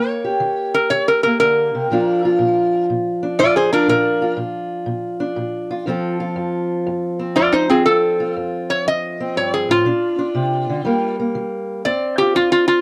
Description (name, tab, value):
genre	acoustic country blues, solo or duo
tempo	121 BPM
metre	4/4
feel	swing 67% on 8ths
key	Bb major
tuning	A4 = 441 Hz
part	metal-body resonator slide guitar	melody	0.0-4.4, 7.4-12.8 s	C4 to Eb5	-19 LUFS	equal	none
part	fingerpicked steel-string acoustic guitar	accompaniment	0.0-12.8 s	F2 to A4	-23 LUFS	equal	none
room	light reverb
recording	dry, close 1970s-style studio recording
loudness	-19 LUFS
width	mono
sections	0.0-12.8 A section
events	resonator guitar played with a steel bar solo 0.0-12.8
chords	0.0 Eb; 1.9 Bb; 5.9 F; 9.9 Bb; 10.8 Eb; 11.8 F5